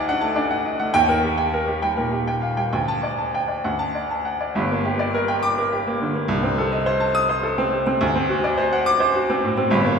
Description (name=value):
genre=classical, virtuoso piano study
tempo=64-72 BPM (dotted quarters)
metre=6/8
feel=rubato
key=unclear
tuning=A4 = 443 Hz
part: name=bright baby grand piano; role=solo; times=0.0-10.0 s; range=G1 to Eb6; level=-19 LUFS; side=equal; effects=none
room=wet recital hall reverb, RT60 1.7 s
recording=recorded in a church or concert hall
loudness=-19 LUFS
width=side -6 dB against mid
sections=0.0-4.6 A section; 4.6-10.0 B section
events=none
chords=0.0 D; 0.9 Eb; 2.7 Dsus4; 3.6 D; 4.6 Gm; 6.3 Adim/C; 8.0 D7